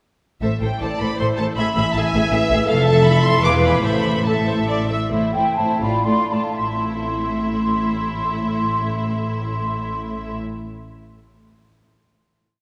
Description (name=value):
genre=classical, dramatic, fast romantic movement for symphony orchestra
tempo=112-163 BPM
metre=3/4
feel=rubato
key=A minor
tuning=A4 = 440 Hz
part: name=dark symphonic violin section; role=melody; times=0.4-10.4 s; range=C5 to D6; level=-29 LUFS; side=equal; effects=none
part: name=rich symphonic violin section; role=second line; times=0.4-10.4 s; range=E4 to F5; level=-30 LUFS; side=equal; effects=none
part: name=concert harp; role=arpeggios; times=0.4-11.2 s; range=E2 to E5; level=-30 LUFS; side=equal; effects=none
part: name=clear symphonic double bass section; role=bass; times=0.4-10.4 s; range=E1 to A1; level=-28 LUFS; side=equal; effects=none
part: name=warm symphonic cello section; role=bass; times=0.4-10.4 s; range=E2 to A2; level=-27 LUFS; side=equal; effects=none
part: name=rich symphonic viola section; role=accompaniment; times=0.8-10.4 s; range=A3 to E5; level=-26 LUFS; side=equal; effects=none
part: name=mellow large flute ensemble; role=second line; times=5.1-10.4 s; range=E5 to C6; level=-26 LUFS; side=equal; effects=none
room=wet concert hall reverb, RT60 2.5 s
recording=none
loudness=-20 LUFS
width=mono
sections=0.4-5.1 A section; 5.1-6.6 coda; 6.6-9.6 final chord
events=slowing down 3.3-6.6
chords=0.4 Am; 1.6 E/A; 2.7 Fmaj7; 3.4 E(b9); 3.8 Am; 5.8 Dm/A; 6.6 Am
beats=| 0.42 0.81 1.19 | 1.57 1.95 2.33 | 2.70 3.07 3.45 | 3.84 4.26 4.67 | 5.12 5.58 6.06 | 6.58 7.09 7.59 | 8.09 8.59 9.10